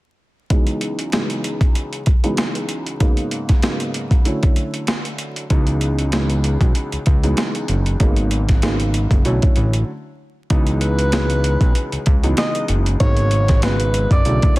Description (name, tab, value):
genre	hip hop, boom-bap hip-hop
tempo	96 BPM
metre	4/4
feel	swing 55% on 16ths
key	C# minor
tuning	A4 = 440 Hz
part	dark upright piano	accompaniment	0.5-14.6 s	C#2 to E4	-23 LUFS	equal	cassette tape, high-pass filter, low-pass filter
part	boom bap sampler-style drum kit	drums	0.5-14.6 s	hi-hat, kick drum, snare drum	-17 LUFS	equal	overdrive
part	fat analog bass	bass	5.5-14.6 s	F#1 to C#2	-18 LUFS	equal	none
part	breathy tenor saxophone	melody	10.8-14.6 s	B4 to D#5	-23 LUFS	equal	high-pass filter, low-pass filter, ping-pong delay
room	little or no reverb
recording	dense, heavily limited modern master, vinyl crackle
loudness	-16 LUFS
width	side -19 dB against mid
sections	0.5-10.5 A section; 10.5-14.6 B section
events	filter sweep on upright piano 0.5-10.5; break 9.9-10.5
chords	0.5 C#m11; 3.0 G#m11; 4.3 Dmaj9; 5.5 C#m11; 8.0 G#m11; 9.3 Bm11; 10.5 C#m11; 13.0 G#m11